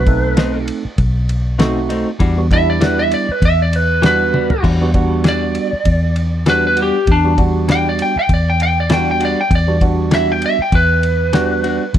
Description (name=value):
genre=straight-eighth soul blues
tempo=98 BPM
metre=4/4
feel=swing 54% on 16ths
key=E minor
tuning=A4 = 440 Hz
part: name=lightly driven lead guitar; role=melody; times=0.0-11.9 s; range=D4 to G5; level=-17 LUFS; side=equal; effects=plate reverb
part: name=vintage muted fingered electric bass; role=bass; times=0.0-12.0 s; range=B1 to E2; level=-17 LUFS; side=equal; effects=none
part: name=barky tine electric piano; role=accompaniment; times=0.1-11.8 s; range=G3 to A4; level=-20 LUFS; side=right 5 dB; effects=overdrive, phaser
part: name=cloth-damped thuddy drum kit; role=drums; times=0.1-12.0 s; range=crash cymbal, kick drum, ride cymbal, snare drum, toms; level=-19 LUFS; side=equal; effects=none
part: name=direct-recorded clean electric guitar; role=stabs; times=0.4-11.8 s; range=B2 to F#4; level=-21 LUFS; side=left 5 dB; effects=none
room=light reverb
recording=none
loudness=-13 LUFS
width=side -10 dB against mid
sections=0.0-4.6 A section; 4.6-12.0 A section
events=lead electric guitar solo 0.0-12.0; drum fill 4.3-4.6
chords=0.0 B7b9; 2.2 Em9